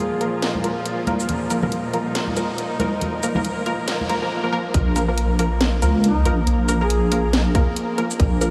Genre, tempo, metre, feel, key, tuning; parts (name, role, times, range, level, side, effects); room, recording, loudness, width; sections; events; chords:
deep dubstep; 139 BPM; 4/4; swing 59% on 16ths, half-time; A4 = 440 Hz
warm duduk; melody; 0.0-0.5, 6.0-7.4 s; Eb4 to Ab4; -32 LUFS; equal; dub echo
bowed-like drone; sustained chords; 0.0-8.5 s; Bb2 to Bb4; -30 LUFS; equal; built-in reverb
filtered dub chord stab; stabs; 0.0-8.5 s; F3 to Bb4; -27 LUFS; equal; chorus, dub echo
garage drum kit; drums; 0.2-8.5 s; hi-hat, shaker, snare drum; -30 LUFS; equal; high-pass filter on hats, high-pass filter on perc, high-pass filter on snare
congas; percussion; 0.5-4.1 s; -30 LUFS; equal; dub echo
deep soft wobble bass; bass; 4.7-8.5 s; Bb1 to Db2; -21 LUFS; equal; chorus
electronic kick drum; drums; 4.7-4.8, 7.5-8.3 s; -21 LUFS; equal
wet huge ambient reverb, RT60 5.0 s; dreamy mix soaked in reverb, small room ambience; -21 LUFS; mono
0.0-4.7 A section; 4.7-8.5 B section
build-up 0.0-4.7; drop 4.7-8.5
0.0 Bb5